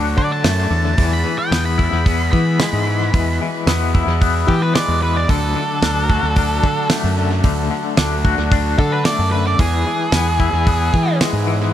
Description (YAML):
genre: psychedelic rock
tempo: 112 BPM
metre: 4/4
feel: straight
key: E mixolydian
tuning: A4 = 440 Hz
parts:
  - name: combo organ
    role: sustained chords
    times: 0.0-11.7 s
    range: E3 to C#5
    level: -29 LUFS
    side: right 6 dB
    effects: spring reverb
  - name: twangy electric guitar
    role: riff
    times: 0.0-11.7 s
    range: D3 to F#4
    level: -21 LUFS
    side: left 8 dB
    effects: tremolo, dub echo
  - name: fuzz fingered electric bass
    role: bass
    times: 0.0-11.7 s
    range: D2 to E3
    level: -19 LUFS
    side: equal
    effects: overdrive
  - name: octave-fuzz lead guitar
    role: melody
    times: 0.2-11.2 s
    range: G4 to B5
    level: -22 LUFS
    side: right 2 dB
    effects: distortion, dub echo
  - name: damped 70s drum kit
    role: drums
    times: 0.2-11.3 s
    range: hi-hat, kick drum, snare drum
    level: -20 LUFS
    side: right 1 dB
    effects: dub echo
room: little or no reverb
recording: echo-heavy mix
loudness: -14 LUFS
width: side -11 dB against mid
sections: 0.0-11.7 A section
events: lead electric guitar solo 0.0-11.7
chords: 0.0 D; 1.0 E; 5.3 D; 9.6 E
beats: 0.45 | 0.98 1.52 2.06 2.60 | 3.13 3.67 4.21 4.75 | 5.29 5.83 6.36 6.90 | 7.44 7.97 8.51 9.05 | 9.59 10.12 10.66 11.20